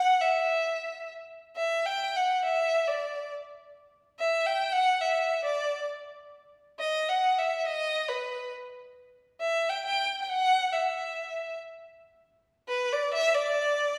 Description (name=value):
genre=mexican folk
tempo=free time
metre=none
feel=none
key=E minor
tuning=A4 = 440 Hz
part: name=rich violin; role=solo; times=0.0-14.0 s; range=B4 to G5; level=-28 LUFS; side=equal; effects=none
room=wet recital hall reverb, RT60 1.6 s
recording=recorded in a church or concert hall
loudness=-28 LUFS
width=mono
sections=0.0-1.5 A section; 1.5-12.0 A section; 12.0-14.0 B section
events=none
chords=none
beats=free time